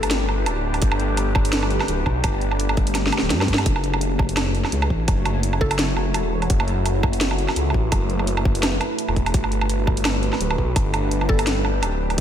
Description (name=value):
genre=half-time drum and bass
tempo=169 BPM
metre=4/4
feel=swing 56% on 16ths, half-time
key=F# phrygian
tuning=A4 = 439 Hz
part: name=mallet-like synth pluck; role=melody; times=0.0-0.3, 5.6-6.0, 11.3-11.6 s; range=A4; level=-31 LUFS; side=left 2 dB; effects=chorus, diffuse ambient delay
part: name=deep dark ambient pad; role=sustained chords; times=0.0-12.2 s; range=A3 to C#5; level=-26 LUFS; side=equal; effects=chorus, built-in reverb, vintage 12-bit sampler grit, sidechain pumping
part: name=phased detuned saw bass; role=bass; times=0.0-12.2 s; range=D1 to G2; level=-23 LUFS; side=equal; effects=phaser
part: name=drum and bass drum kit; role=drums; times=0.0-12.2 s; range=hi-hat, snare drum, woodblock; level=-24 LUFS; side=right 2 dB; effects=small room ambience
part: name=electronic kick drum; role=drums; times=0.8-12.2 s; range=none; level=-21 LUFS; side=equal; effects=small room ambience
room=light reverb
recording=none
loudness=-18 LUFS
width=side -10 dB against mid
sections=0.0-12.2 A section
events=drum fill 3.0-3.7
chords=0.0 Gadd9; 3.7 F#m7; 9.3 Gadd9